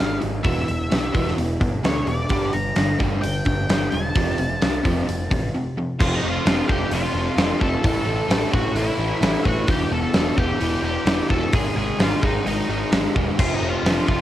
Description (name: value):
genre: quiet-loud alternative rock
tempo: 130 BPM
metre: 4/4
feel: straight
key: unclear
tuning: A4 = 437 Hz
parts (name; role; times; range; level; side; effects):
- octave-fuzz lead guitar; melody; 0.0-14.2 s; Eb4 to Bb5; -28 LUFS; left 1 dB; distortion, cassette tape, analog delay
- fingerpicked steel-string acoustic guitar; arpeggios; 0.0-6.0 s; E2 to G3; -31 LUFS; right 3 dB; cassette tape, analog delay
- overdriven electric guitar; riff; 0.0-14.2 s; E2 to A3; -25 LUFS; equal; cassette tape
- fuzz picked electric bass; bass; 0.0-14.2 s; E1 to D2; -26 LUFS; equal; overdrive
- big rock drum kit; drums; 0.2-14.2 s; crash cymbal, hi-hat, kick drum, snare drum; -22 LUFS; equal; cassette tape
room: studio reverb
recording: home recording on cassette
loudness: -19 LUFS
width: side -13 dB against mid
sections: 0.0-6.0 A section; 6.0-14.2 B section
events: break 5.5-6.0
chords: 0.4 E5; 2.3 Gm; 4.2 F; 7.8 A5; 9.7 Em; 11.5 Ab5; 13.4 F5